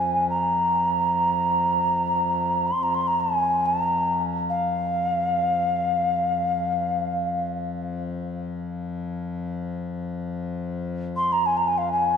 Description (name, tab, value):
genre	world meditative, free-time meditation music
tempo	free time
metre	none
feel	none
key	F minor pentatonic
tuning	A4 = 440 Hz
part	mellow alto ocarina	melody	0.0-12.2 s	F5 to C6	-22 LUFS	equal	ping-pong delay
part	pedal harmonium	drone	0.0-12.2 s	F2	-30 LUFS	left 3 dB	none
room	wet church reverb, RT60 2.7 s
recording	dark, warm production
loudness	-22 LUFS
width	side -7 dB against mid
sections	0.0-12.2 A section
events	none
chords	none